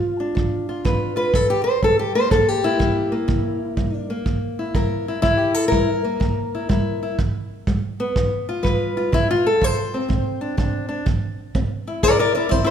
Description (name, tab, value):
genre	acoustic country blues, solo or duo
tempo	123 BPM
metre	4/4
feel	swing 66% on 8ths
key	unclear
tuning	A4 = 440 Hz
part	fingerpicked steel-string acoustic guitar	melody	0.0-12.7 s	G2 to D5	-20 LUFS	left 1 dB	none
part	kick drum	drums	0.4-12.7 s	none	-23 LUFS	right 2 dB	none
room	light reverb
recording	none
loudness	-18 LUFS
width	side -8 dB against mid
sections	0.0-12.7 A section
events	none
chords	0.0 G7; 1.3 C7; 5.2 C#dim7; 7.2 G7; 9.1 D7; 11.1 C7